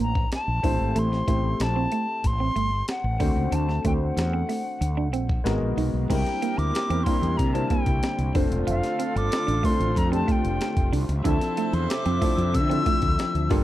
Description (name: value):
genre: polished 1980s jazz-funk pop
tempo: 93 BPM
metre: 4/4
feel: straight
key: unclear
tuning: A4 = 441 Hz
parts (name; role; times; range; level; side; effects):
- silver concert flute; melody; 0.0-13.5 s; F5 to E6; -29 LUFS; left 2 dB; none
- dark concert grand piano; accompaniment; 0.0-13.6 s; F3 to C5; -29 LUFS; left 3 dB; analog chorus
- semi-hollow electric guitar; riff; 0.0-13.6 s; A3 to F4; -29 LUFS; right 6 dB; analog chorus
- mellow fretless electric bass; bass; 0.0-13.6 s; E1 to D3; -26 LUFS; equal; none
- breakbeat sampler-style drum kit; drums; 0.2-13.6 s; crash cymbal, hi-hat, kick drum, snare drum; -27 LUFS; equal; none
- dark horn section; second line; 6.1-13.6 s; D4 to D5; -34 LUFS; right 6 dB; none
- muted studio string section; sustained chords; 6.1-13.6 s; Bb2 to E5; -35 LUFS; left 1 dB; none
room: little or no reverb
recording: dry, close 1970s-style studio recording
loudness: -22 LUFS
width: side -14 dB against mid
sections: 0.0-6.1 A section; 6.1-13.6 B section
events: none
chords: 0.0 C9; 0.6 Am7; 3.2 D7; 5.5 Abm9; 6.1 C9; 8.4 F6; 11.3 Dm9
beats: 0.31 | 0.95 1.60 2.24 2.88 | 3.53 4.17 4.81 5.46 | 6.10 6.74 7.39 8.03 | 8.67 9.32 9.96 10.61 | 11.25 11.90 12.54 13.19